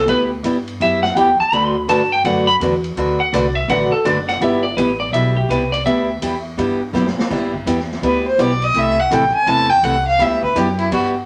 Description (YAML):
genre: country, western swing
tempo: 166 BPM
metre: 4/4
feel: swing 64% on 8ths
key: G major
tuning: A4 = 442 Hz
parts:
  - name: clean lap steel guitar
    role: melody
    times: 0.0-6.4 s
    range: G4 to C6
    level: -20 LUFS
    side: equal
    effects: none
  - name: upright bass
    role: bass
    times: 0.0-11.3 s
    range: F#1 to G2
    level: -26 LUFS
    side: equal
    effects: none
  - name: picked acoustic archtop guitar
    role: accompaniment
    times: 0.1-11.1 s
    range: C3 to B4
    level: -22 LUFS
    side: equal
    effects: none
  - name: swinging big-band drum kit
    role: drums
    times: 0.1-11.0 s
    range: crash cymbal, hi-hat, kick drum, ride cymbal, snare drum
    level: -32 LUFS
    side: equal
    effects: none
  - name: clear fiddle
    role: second line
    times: 8.1-11.1 s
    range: E4 to A5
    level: -18 LUFS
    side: equal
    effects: none
room: wet club reverb, RT60 0.8 s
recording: none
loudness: -17 LUFS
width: mono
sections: 0.0-7.3 A section; 7.3-11.3 A section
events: electric slide guitar solo 0.0-7.3; drum fill 6.9-7.3; fiddle solo 7.3-11.3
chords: 0.0 G6; 1.5 D6; 4.4 G6; 8.8 C6; 10.2 G6